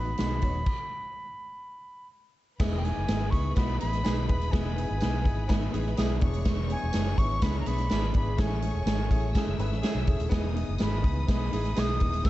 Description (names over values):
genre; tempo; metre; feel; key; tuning
uptempo 1960s-style soul; 124 BPM; 4/4; straight; E major; A4 = 440 Hz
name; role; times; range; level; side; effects
concert flute; melody; 0.0-12.3 s; G5 to E6; -35 LUFS; equal; none
clear upright piano; accompaniment; 0.0-12.3 s; A3 to C#5; -36 LUFS; left 3 dB; none
tonewheel organ; sustained chords; 0.0-12.3 s; D#3 to D#5; -43 LUFS; right 1 dB; none
fingered electric bass; bass; 0.0-12.3 s; D#1 to C#2; -29 LUFS; equal; none
swinging big-band drum kit; drums; 0.2-12.3 s; crash cymbal, hi-hat, kick drum, snare drum; -28 LUFS; equal; none
tambourine; percussion; 0.2-12.3 s; none; -48 LUFS; right 5 dB; none
warm studio string section; second line; 2.6-12.3 s; D#4 to E6; -42 LUFS; left 2 dB; none
clear saxophone section; second line; 3.8-12.2 s; G#3 to G#4; -41 LUFS; right 3 dB; none
room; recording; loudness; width
studio ambience; dark, warm production, nothing above 8.0 kHz; -25 LUFS; side -15 dB against mid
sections
0.0-2.6 A section; 2.6-12.3 B section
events
stop 0.7-2.6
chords
0.0 B; 0.7 N.C.; 2.6 Emaj7; 6.2 E7; 8.4 Amaj7